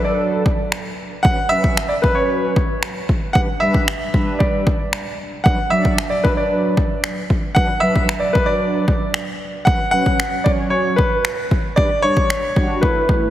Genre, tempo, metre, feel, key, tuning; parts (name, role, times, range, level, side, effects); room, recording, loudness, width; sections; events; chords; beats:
dance-pop; 114 BPM; 4/4; straight; D major; A4 = 440 Hz
clear baby grand piano; melody; 0.0-13.3 s; B4 to F#5; -20 LUFS; equal; tape echo
mellow synth brass; accompaniment; 0.0-13.3 s; F#3 to D5; -23 LUFS; right 1 dB; chorus, sidechain pumping
punchy analog drum machine; drums; 0.5-13.2 s; finger snaps, kick drum; -18 LUFS; equal; overdrive
moderate concert hall reverb, RT60 2.5 s; heavily compressed radio sound, multiband compression; -15 LUFS; side -12 dB against mid
0.0-13.3 A section
0.0 D; 1.2 Bsus2; 3.4 G; 5.5 D6; 9.7 Bsus2; 11.8 G5
0.20 0.72 | 1.25 1.77 2.30 2.83 | 3.35 3.88 4.41 4.93 | 5.46 5.98 6.51 7.04 | 7.56 8.09 8.62 9.14 | 9.67 10.20 10.72 11.25 | 11.77 12.30 12.83